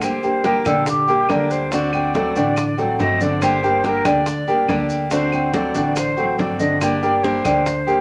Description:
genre	latin, Cuban son and guajira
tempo	141 BPM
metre	4/4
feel	straight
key	G minor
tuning	A4 = 441 Hz
part	mellow hollow silver concert flute	second line	0.0-8.0 s	G4 to Eb5	-26 LUFS	equal	none
part	fingerpicked steel-string acoustic guitar	accompaniment	0.0-8.0 s	D3 to G4	-23 LUFS	equal	none
part	bongos	percussion	0.0-8.0 s	none	-31 LUFS	equal	none
part	claves	percussion	0.0-7.7 s	none	-35 LUFS	equal	none
part	congas	percussion	0.0-8.0 s	none	-33 LUFS	equal	none
part	maracas	percussion	0.0-8.0 s	none	-39 LUFS	equal	none
part	dark grand piano	arpeggios	0.2-8.0 s	D3 to D5	-24 LUFS	equal	none
part	upright bass	bass	0.7-8.0 s	G1 to D2	-33 LUFS	equal	none
room	moderate club reverb, RT60 0.7 s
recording	none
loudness	-19 LUFS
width	mono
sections	0.0-8.0 A section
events	none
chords	0.0 Gm; 1.7 D7; 3.4 Gm; 5.1 D7; 6.8 Gm

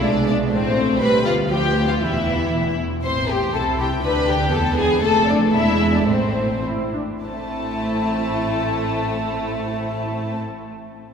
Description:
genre	quick classical-period movement for string orchestra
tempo	98-124 BPM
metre	2/4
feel	rubato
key	A minor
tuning	A4 = 441 Hz
part	warm studio violin section	melody	0.0-10.4 s	C5 to C6	-28 LUFS	left 2 dB	none
part	dark studio violin section	second line	0.0-10.4 s	A3 to C5	-22 LUFS	left 2 dB	none
part	dark studio viola section	accompaniment	0.0-10.4 s	E3 to E4	-24 LUFS	right 2 dB	none
part	dark studio double bass section	bass	0.0-10.4 s	E1 to D2	-28 LUFS	right 1 dB	none
part	warm studio cello section	bass	0.0-10.4 s	D2 to D3	-27 LUFS	right 1 dB	none
room	wet church reverb, RT60 3.4 s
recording	minimal, uncompressed stereo recording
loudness	-18 LUFS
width	side -6 dB against mid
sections	0.0-7.2 A section; 7.2-9.6 B section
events	slowing down 4.5-7.2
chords	0.0 G#dim/B; 0.5 Am; 1.0 G7/D; 2.0 N.C.; 3.0 Am; 3.5 Am/C; 4.0 G/D; 4.5 E; 5.0 Dm/F; 5.5 E; 6.1 Am

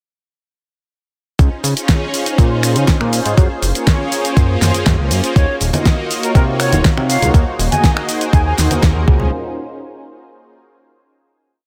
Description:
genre	nu-disco, nu disco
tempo	121 BPM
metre	4/4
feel	straight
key	Db major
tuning	A4 = 441 Hz
part	warm analog pad	accompaniment	1.4-9.3 s	Bb3 to Eb5	-22 LUFS	equal	chorus, sidechain pumping, delay
part	chorused synth bass	bass	1.4-9.3 s	Eb1 to Db3	-19 LUFS	equal	tube saturation
part	electronic kick drum	drums	1.4-9.2 s	none	-14 LUFS	equal	overdrive
part	pop drum kit	drums	1.4-8.9 s	cabasa, finger snaps, hi-hat, snare drum	-21 LUFS	equal	none
part	silver concert flute	melody	5.4-8.5 s	Bb4 to Ab5	-24 LUFS	equal	tape echo
part	congas	percussion	5.7-9.3 s	none	-25 LUFS	equal	none
room	digital ambience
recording	none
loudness	-15 LUFS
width	mono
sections	1.4-9.3 drop; 9.3-11.3 final hit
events	drop 1.4-9.3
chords	1.4 Dbmaj7; 3.4 Gbmaj9#11; 5.4 Ebm9; 7.3 Ab7/Eb; 9.1 Dbmaj7; 9.3 N.C.

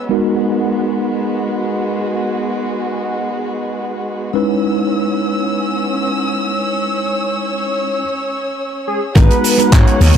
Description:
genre	nu-disco, nu disco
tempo	free time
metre	none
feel	none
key	G# minor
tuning	A4 = 436 Hz
part	dark studio violin section	sustained chords	0.0-10.2 s	G#3 to E6	-21 LUFS	equal	sidechain pumping
part	mellow tine electric piano	accompaniment	0.1-10.2 s	G#3 to A#5	-18 LUFS	right 1 dB	medium stereo tremolo, sidechain pumping, analog delay
part	wide unison lead	melody	8.9-10.2 s	G#4 to C#5	-18 LUFS	equal	analog delay
part	clean electric guitar	riff	9.2-9.8 s	D#4 to B4	-24 LUFS	right 1 dB	analog chorus, analog delay
part	vintage slap bass	bass	9.2-10.2 s	G#1 to G#2	-10 LUFS	equal	none
part	damped 70s drum kit	drums	9.2-10.1 s	handclaps, hi-hat, shaker	-19 LUFS	right 3 dB	small room ambience, analog delay
part	electronic kick drum	drums	9.2-9.8 s	none	-10 LUFS	equal	overdrive, small room ambience
room	moderate spring reverb, RT60 1.4 s, small room ambience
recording	echo-heavy mix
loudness	-15 LUFS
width	side -8 dB against mid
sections	0.0-9.2 A section; 9.2-10.2 B section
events	break 8.0-9.2; drop 9.2-10.2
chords	0.1 G#m7; 4.3 C#m7; 9.2 G#m7

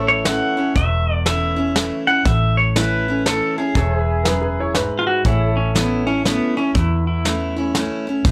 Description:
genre	honky-tonk and classic country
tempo	120 BPM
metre	3/4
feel	swing 63% on 8ths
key	A major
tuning	A4 = 442 Hz
part	picked steel-string acoustic guitar	accompaniment	0.0-8.3 s	E2 to E4	-26 LUFS	equal	none
part	pedal steel guitar	sustained chords	0.0-8.3 s	G#4 to E5	-30 LUFS	equal	none
part	vintage muted fingered electric bass	bass	0.0-8.3 s	E1 to E2	-24 LUFS	equal	none
part	pedal steel guitar	melody	0.1-7.7 s	B3 to F#5	-24 LUFS	equal	none
part	soft brush drum kit	drums	0.3-8.3 s	hi-hat, kick drum, snare drum	-22 LUFS	equal	none
part	clear upright piano	second line	4.2-5.1 s	E4 to C#5	-26 LUFS	equal	none
room	light reverb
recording	close, detailed microphones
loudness	-19 LUFS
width	mono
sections	0.0-5.3 A section; 5.3-8.3 A section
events	none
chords	0.0 A; 3.8 E; 5.3 A

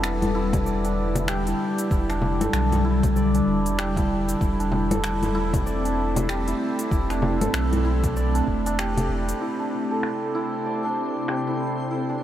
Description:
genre	organic downtempo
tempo	96 BPM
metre	4/4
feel	swing 60% on 16ths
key	unclear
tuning	A4 = 440 Hz
part	ethereal airy pad	sustained chords	0.0-12.2 s	C3 to A4	-27 LUFS	equal	ensemble chorus, built-in reverb, phaser, sidechain pumping
part	santur	arpeggios	0.0-12.2 s	B3 to D5	-27 LUFS	equal	low-pass filter, tape echo
part	warm sub bass	bass	0.0-9.3 s	E1 to B1	-26 LUFS	equal	tube saturation
part	organic electronic drum kit	drums	0.0-12.2 s	cabasa, congas, finger snaps, hi-hat	-32 LUFS	left 2 dB	low-pass filter on perc, low-pass filter on hats, low-pass filter on snare, low-pass filter on room
part	electronic kick drum	drums	0.5-8.6 s	none	-26 LUFS	equal	none
part	frame drum	percussion	0.5-9.1 s	none	-32 LUFS	left 1 dB	none
part	twinkling granular texture	texture	10.1-12.2 s	C4 to C5	-38 LUFS	equal	built-in reverb
room	wet huge ambient reverb, RT60 7.8 s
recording	dreamy mix soaked in reverb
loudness	-21 LUFS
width	side -11 dB against mid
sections	0.0-9.4 A section; 9.4-12.2 B section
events	kick drops out 8.8-9.4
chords	0.0 Em7; 4.4 Am/E; 9.4 Am

